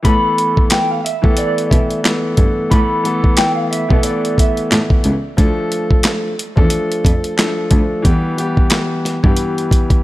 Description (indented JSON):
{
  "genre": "hip hop, boom-bap hip-hop",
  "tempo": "90 BPM",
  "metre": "4/4",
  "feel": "swing 58% on 16ths",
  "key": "unclear",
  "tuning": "A4 = 438 Hz",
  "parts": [
    { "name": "mellow electric guitar", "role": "melody", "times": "0.0-4.9 s", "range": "D5 to B5", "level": "-20 LUFS", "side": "right 1 dB", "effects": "lush chorus, high-pass filter, low-pass filter, analog delay" },
    { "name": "dark baby grand piano", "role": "accompaniment", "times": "0.0-10.0 s", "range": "E3 to A4", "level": "-18 LUFS", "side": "left 1 dB", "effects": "high-pass filter, low-pass filter" },
    { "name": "dark cello", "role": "bass", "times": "0.0-9.3 s", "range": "C#2 to B2", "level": "-19 LUFS", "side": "equal", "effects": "none" },
    { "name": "dusty soul sampler-style drum kit", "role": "drums", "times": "0.0-10.0 s", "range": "handclaps, hi-hat, kick drum, snare drum", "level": "-14 LUFS", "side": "equal", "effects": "none" }
  ],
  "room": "small room ambience",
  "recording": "none",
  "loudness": "-13 LUFS",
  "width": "side -16 dB against mid",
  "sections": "0.0-10.0 A section",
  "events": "none",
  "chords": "0.0 Asus2; 5.4 Dm; 8.0 Em",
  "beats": "| 0.05 0.71 1.38 2.05 | 2.71 3.38 4.05 4.71 | 5.38 6.05 6.71 7.38 | 8.05 8.71 9.38"
}